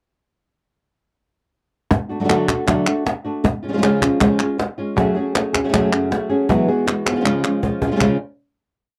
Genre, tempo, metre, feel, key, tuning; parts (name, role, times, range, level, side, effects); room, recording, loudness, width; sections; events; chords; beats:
flamenco; 158 BPM; 4/4; straight; C# phrygian dominant; A4 = 440 Hz
nylon-string guitar; accompaniment; 1.9-8.2 s; C#3 to A4; -21 LUFS; equal
flamenco guitar; stabs; 1.9-8.2 s; E2 to G#4; -25 LUFS; equal
cajon; percussion; 1.9-8.1 s; -26 LUFS; equal
palmas hand claps; percussion; 1.9-8.1 s; -25 LUFS; equal
light reverb; dry, close 1970s-style studio recording; -19 LUFS; mono
1.9-8.0 groove; 8.0-9.0 final chord
drum fill 6.9-8.0
1.9 D; 3.4 C#; 5.0 F#madd9; 6.5 Eadd9; 7.3 C#
| 1.91 2.29 2.68 3.06 | 3.44 3.83 4.21 4.59 | 4.97 5.35 5.74 6.12 | 6.50 6.87 7.25 7.63 | 8.01